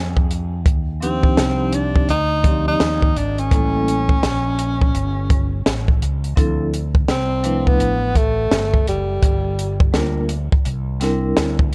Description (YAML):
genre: hip hop, jazz-hop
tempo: 84 BPM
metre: 4/4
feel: swing 63% on 16ths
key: unclear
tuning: A4 = 440 Hz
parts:
  - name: fretless electric bass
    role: bass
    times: 0.0-11.7 s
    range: F#1 to F2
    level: -25 LUFS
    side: equal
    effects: none
  - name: compact cocktail drum kit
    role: drums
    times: 0.2-11.7 s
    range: hi-hat, kick drum, snare drum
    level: -20 LUFS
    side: equal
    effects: vintage 12-bit sampler grit
  - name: breathy tenor saxophone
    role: melody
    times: 1.0-9.9 s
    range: G3 to Eb4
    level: -24 LUFS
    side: equal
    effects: none
  - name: vibraphone with medium mallets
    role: accompaniment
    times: 1.0-11.6 s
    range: F3 to D5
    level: -25 LUFS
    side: equal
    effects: none
room: small room ambience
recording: none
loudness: -19 LUFS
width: mono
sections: 0.0-6.4 A section; 6.4-11.7 B section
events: tenor saxophone solo 6.4-11.7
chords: 0.0 N.C.; 0.7 Ebmaj13; 3.5 A7b9; 6.4 Dm9; 9.2 Gm7; 10.7 C9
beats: | 0.66 1.37 2.08 2.80 | 3.51 4.23 4.94 5.66 | 6.37 7.08 7.80 8.51 | 9.23 9.94 10.65 11.37